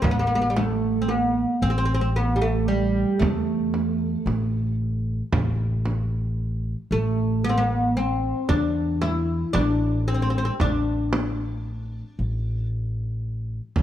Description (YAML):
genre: Arabic maqam ensemble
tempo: 114 BPM (eighths)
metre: 10/8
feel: straight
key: A maqam bayati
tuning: A4 = 442 Hz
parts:
  - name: oud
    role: melody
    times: 0.0-12.7 s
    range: G3 to E4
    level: -23 LUFS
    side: equal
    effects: none
  - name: upright bass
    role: bass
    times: 0.0-13.8 s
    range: A1 to E2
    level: -25 LUFS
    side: equal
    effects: none
  - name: frame drum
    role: percussion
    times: 0.0-13.8 s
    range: none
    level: -27 LUFS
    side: right 2 dB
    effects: none
room: light reverb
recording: dark, warm production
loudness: -21 LUFS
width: side -11 dB against mid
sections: 0.0-13.8 A section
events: none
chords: none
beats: | 0.03 0.56 1.09 1.62 2.15 2.68 3.21 3.73 4.26 4.79 | 5.32 5.85 6.38 6.91 7.43 7.96 8.49 9.02 9.54 10.07 | 10.60 11.12 11.65 12.18 12.70 13.23 13.76